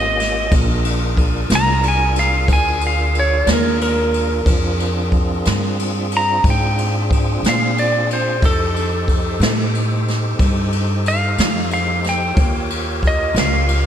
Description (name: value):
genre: slow blues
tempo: 61 BPM (dotted quarters)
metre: 12/8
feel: straight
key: Bb mixolydian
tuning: A4 = 440 Hz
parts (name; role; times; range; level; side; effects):
- clean lap steel guitar; melody; 0.0-13.9 s; A4 to Bb5; -20 LUFS; equal; slapback echo
- tonewheel organ; sustained chords; 0.0-13.9 s; Bb3 to Db5; -25 LUFS; right 1 dB; slow rotary speaker, overdrive, chorus vibrato
- upright bass; bass; 0.0-13.9 s; Ab1 to Bb2; -20 LUFS; equal; none
- jazz brush drum kit; drums; 0.2-13.8 s; kick drum, ride cymbal, snare drum; -20 LUFS; equal; none
room: moderate lush hall reverb, RT60 2.6 s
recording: big arena sound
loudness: -15 LUFS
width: side -9 dB against mid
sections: 0.0-13.9 A section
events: electric slide guitar solo 0.0-13.9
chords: 0.0 Eb9; 0.5 Bb9; 8.4 F9; 12.4 Eb9